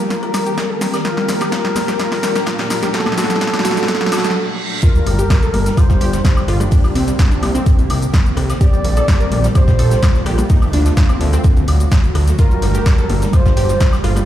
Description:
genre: progressive house.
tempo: 127 BPM.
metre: 4/4.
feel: straight.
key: G minor.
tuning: A4 = 439 Hz.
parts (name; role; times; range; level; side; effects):
shimmering ambient pad; sustained chords; 0.0-14.3 s; Bb2 to A4; -25 LUFS; right 1 dB; chorus, built-in reverb, sidechain pumping.
wide unison pluck; arpeggios; 0.0-14.2 s; F#3 to Bb4; -23 LUFS; equal; sidechain pumping, ping-pong delay.
riser, reverse cymbal and sub drop; sound effects; 1.0-6.7 s; none; -27 LUFS; right 1 dB; none.
expressive portamento lead; melody; 0.1-14.0 s; A4 to D5; -24 LUFS; equal; chorus, cassette tape, sidechain pumping, ping-pong delay.
airy dreamy lead; second line; 0.1-14.0 s; A4 to D5; -25 LUFS; equal; chorus, sidechain pumping, ping-pong delay.
deep house drum kit; drums; 0.1-14.3 s; cabasa, hi-hat, snare drum; -22 LUFS; equal; none.
electronic kick drum; drums; 0.1-13.9 s; none; -12 LUFS; equal; high-pass filter on kick, high-pass filter on room.
jazz brush drum kit; drums; 0.1-14.2 s; hi-hat, snare drum; -34 LUFS; left 2 dB; none.
woodblock, cowbell and congas; percussion; 0.1-14.3 s; none; -28 LUFS; left 3 dB; sidechain pumping on perc.
fat analog bass; bass; 5.1-14.2 s; G1 to D2; -15 LUFS; equal; sidechain pumping.
room: light reverb, digital ambience.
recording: played on a big sound system in a bare room, large studio reverb.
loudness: -12 LUFS.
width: side -12 dB against mid.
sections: 0.0-4.8 A section; 4.8-14.3 B section.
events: build-up 0.0-4.8; drum fill 0.0-4.4; filter sweep on synth pluck 0.0-4.8; filter sweep on analog synth lead 0.0-4.8; reverse cymbal 3.9-4.8; stop 4.4-4.8; drop 4.8-14.3; impact 4.8-6.7.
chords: 0.0 Cm7; 1.0 Gm7/Bb; 2.9 D; 4.8 Gm7; 6.7 Cm7; 8.6 Gm7/Bb; 10.5 D; 12.4 Gm7.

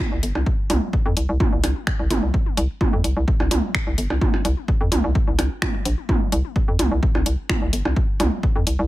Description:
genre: minimal techno.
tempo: 128 BPM.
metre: 4/4.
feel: straight.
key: unclear.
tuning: A4 = 441 Hz.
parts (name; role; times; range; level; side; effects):
electronic kick drum; drums; 0.0-8.5 s; none; -22 LUFS; equal; small room reverb.
house drum kit; drums; 0.0-8.8 s; finger snaps, hi-hat; -26 LUFS; left 1 dB; small room reverb.
electronic toms and percussion blips; percussion; 0.0-8.3 s; none; -26 LUFS; right 1 dB; small room reverb, ping-pong delay.
hollow knocking FM bass; bass; 0.1-8.9 s; G1 to F2; -21 LUFS; equal; tube saturation, sidechain pumping.
room: little or no reverb.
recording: none.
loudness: -18 LUFS.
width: side -16 dB against mid.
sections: 0.0-8.9 A section.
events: none.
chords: none.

